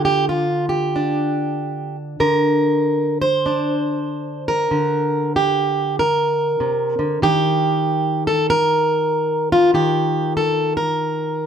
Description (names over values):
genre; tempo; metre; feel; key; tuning
folk, solo fingerstyle acoustic guitar; 96 BPM; 4/4; swing 62% on 8ths; unclear; A4 = 441 Hz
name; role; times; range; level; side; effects
fingerpicked plugged-in steel-string acoustic guitar; solo; 0.0-11.5 s; C3 to C5; -17 LUFS; equal; none
room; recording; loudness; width
moderate small room reverb, RT60 0.5 s; none; -17 LUFS; side -8 dB against mid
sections
0.0-11.5 A section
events
none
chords
0.0 N.C.; 2.2 Gm/D; 7.2 Eb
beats
0.32 0.94 1.57 | 2.20 2.83 3.46 4.08 | 4.71 5.34 5.97 6.60 | 7.22 7.85 8.48 9.11 | 9.74 10.37 10.99